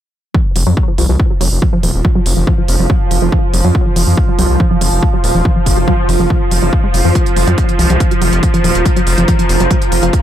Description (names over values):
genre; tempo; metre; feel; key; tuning
driving peak-time techno; 141 BPM; 4/4; straight; unclear; A4 = 440 Hz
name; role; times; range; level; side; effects
tight sequenced synth; riff; 0.3-10.2 s; F3 to Ab3; -18 LUFS; left 1 dB; chorus, tube saturation, sidechain pumping, ping-pong delay
swarming drone; drone; 1.5-10.2 s; F3; -19 LUFS; equal; built-in reverb, phaser, sidechain pumping
electronic kick drum; drums; 0.3-10.2 s; none; -14 LUFS; equal; none
deep dark ambient pad; texture; 1.4-10.2 s; F4 to Bb5; -21 LUFS; right 3 dB; chorus, built-in reverb, sidechain pumping
gritty driven synth bass; bass; 0.6-10.1 s; Eb1 to F2; -14 LUFS; equal; tube saturation, sidechain pumping
electronic hi-hat; drums; 0.6-10.2 s; none; -22 LUFS; right 2 dB; none
room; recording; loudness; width
digital ambience; none; -10 LUFS; side -11 dB against mid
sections
0.3-10.2 A section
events
none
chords
0.3 F5